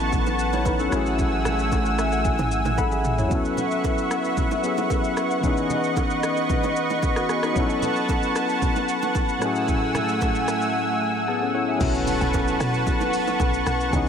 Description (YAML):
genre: amapiano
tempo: 113 BPM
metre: 4/4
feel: straight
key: unclear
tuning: A4 = 437 Hz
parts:
  - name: tine electric piano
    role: accompaniment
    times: 0.0-14.1 s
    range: A2 to B5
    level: -26 LUFS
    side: left 4 dB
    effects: analog chorus
  - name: lush unison pad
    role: sustained chords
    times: 0.0-14.1 s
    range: A3 to E6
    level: -24 LUFS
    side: right 1 dB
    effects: chorus
  - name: punchy sub bass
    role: bass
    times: 0.0-3.3 s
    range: A1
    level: -27 LUFS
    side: equal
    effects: none
  - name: deep house drum kit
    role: drums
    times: 0.0-14.1 s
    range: crash cymbal, hi-hat, kick drum, rim click, shaker, toms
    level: -27 LUFS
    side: equal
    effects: vintage 12-bit sampler grit
  - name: congas and bongos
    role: percussion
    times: 0.1-14.1 s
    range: none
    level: -35 LUFS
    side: right 8 dB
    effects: none
  - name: woody log drum bass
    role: bass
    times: 11.8-14.1 s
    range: B1 to B2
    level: -26 LUFS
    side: equal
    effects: none
  - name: impact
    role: sound effects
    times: 11.8-13.9 s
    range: none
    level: -36 LUFS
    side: right 1 dB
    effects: none
room: moderate huge ambient reverb, RT60 4.8 s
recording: dreamy mix soaked in reverb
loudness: -20 LUFS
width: side -7 dB against mid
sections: 0.0-11.8 A section; 11.8-14.1 B section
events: tine electric piano fill 1.7-3.3, 10.7-11.8; drum fill 2.8-3.3; drop 11.8-14.1; impact 11.8-13.9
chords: 0.0 A69; 0.9 F#m9/A; 3.3 B9sus4; 5.4 C#m9; 7.6 A69; 9.4 F#m9/A; 11.8 B9sus4